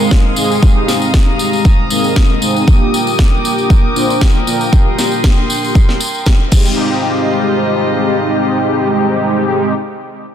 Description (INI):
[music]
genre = nu-disco, nu disco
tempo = 117 BPM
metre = 4/4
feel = straight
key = F dorian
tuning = A4 = 440 Hz
[part]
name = mellow synth brass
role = accompaniment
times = 0.0-9.7 s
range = Ab3 to C5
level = -15 LUFS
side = equal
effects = chorus, sidechain pumping, digital delay
[part]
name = warm studio violin section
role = sustained chords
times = 0.0-9.7 s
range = Ab3 to Eb6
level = -20 LUFS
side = left 1 dB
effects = vintage 12-bit sampler grit, sidechain pumping, low-pass filter
[part]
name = tambourine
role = percussion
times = 0.0-6.8 s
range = none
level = -23 LUFS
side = left 1 dB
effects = none
[part]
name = electronic kick drum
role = drums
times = 0.1-6.6 s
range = none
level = -10 LUFS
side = equal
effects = none
[part]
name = house drum kit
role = drums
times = 0.1-6.6 s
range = crash cymbal, snare drum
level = -22 LUFS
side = equal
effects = none
[sound]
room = light reverb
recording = dense, heavily limited modern master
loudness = -10 LUFS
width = side -9 dB against mid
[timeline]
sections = 0.0-6.8 A section; 6.8-10.3 B section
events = none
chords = 0.0 Fm7; 2.7 Ebmaj7; 6.5 Fm7